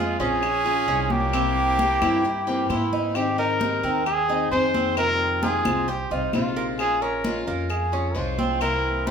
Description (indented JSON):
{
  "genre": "latin, Cuban son and guajira",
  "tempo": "132 BPM",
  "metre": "4/4",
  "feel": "straight",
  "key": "unclear",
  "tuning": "A4 = 440 Hz",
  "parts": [
    { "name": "breathy trumpet", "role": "melody", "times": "0.0-9.1 s", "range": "E4 to C5", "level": "-24 LUFS", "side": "equal", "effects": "none" },
    { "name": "brilliant trumpet", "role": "second line", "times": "0.0-2.7 s", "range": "Ab3 to Db4", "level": "-32 LUFS", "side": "right 5 dB", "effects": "none" },
    { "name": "picked acoustic archtop guitar", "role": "accompaniment", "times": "0.0-9.1 s", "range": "C3 to Ab4", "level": "-28 LUFS", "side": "left 3 dB", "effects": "none" },
    { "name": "Cuban tres", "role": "arpeggios", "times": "0.0-9.1 s", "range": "Bb3 to C5", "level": "-30 LUFS", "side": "right 4 dB", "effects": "none" },
    { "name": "upright bass", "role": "bass", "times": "0.0-9.1 s", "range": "Bb1 to Ab2", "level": "-30 LUFS", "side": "right 1 dB", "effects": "none" },
    { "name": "claves", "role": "percussion", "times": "0.4-8.8 s", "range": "none", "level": "-35 LUFS", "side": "left 2 dB", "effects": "none" },
    { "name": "congas", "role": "percussion", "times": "0.4-9.1 s", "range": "none", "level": "-31 LUFS", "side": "equal", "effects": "none" }
  ],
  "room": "wet large studio reverb, RT60 0.8 s",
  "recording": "band playing live in one room",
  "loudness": "-20 LUFS",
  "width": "side -7 dB against mid",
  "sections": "0.0-3.2 A section; 3.2-9.1 B section",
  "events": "none",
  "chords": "0.0 Bbm7; 1.3 C7; 3.2 Abmaj7; 5.0 Fm7; 6.8 Bbm7",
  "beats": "0.42 0.88 | 1.33 1.79 2.24 2.70 | 3.15 3.61 4.06 4.52 | 4.97 5.43 5.88 6.34 | 6.79 7.25 7.70 8.16 | 8.62 9.07"
}